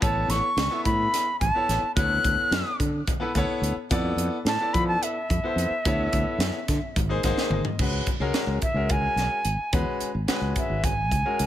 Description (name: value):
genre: electric jazz fusion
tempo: 216 BPM (eighths)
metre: 7/8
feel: straight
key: C# dorian from 7.8 s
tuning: A4 = 440 Hz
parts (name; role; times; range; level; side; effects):
- bright reedy jazz flute; melody; 0.0-11.5 s; E5 to F#6; -26 LUFS; equal; none
- bright concert grand piano; accompaniment; 0.0-11.5 s; G#3 to F#5; -30 LUFS; left 2 dB; none
- fretless electric bass; bass; 0.0-11.5 s; G#1 to F3; -27 LUFS; equal; none
- crisp fusion drum kit; drums; 0.0-11.5 s; crash cymbal, hi-hat, kick drum, snare drum, toms; -28 LUFS; equal; none
room: little or no reverb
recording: none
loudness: -22 LUFS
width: side -12 dB against mid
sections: 0.0-7.8 A section; 7.8-11.5 B section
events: grand piano fill 7.0-7.8; drum fill 7.4-7.8; flute solo 7.8-11.5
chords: 0.0 A; 2.0 Dmaj9; 3.9 Fmaj7; 5.8 Dmaj7(no3); 7.0 G#; 7.8 C#7(no3)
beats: | 0.02 0.30 0.57 0.85 1.13 1.41 1.69 | 1.96 2.24 2.52 2.80 3.07 3.35 3.63 | 3.90 4.18 4.46 4.74 5.01 5.29 5.57 | 5.85 6.12 6.40 6.68 6.95 7.23 7.51 | 7.79 8.06 8.34 8.62 8.89 9.17 9.45 | 9.73 10.00 10.28 10.56 10.84 11.11 11.39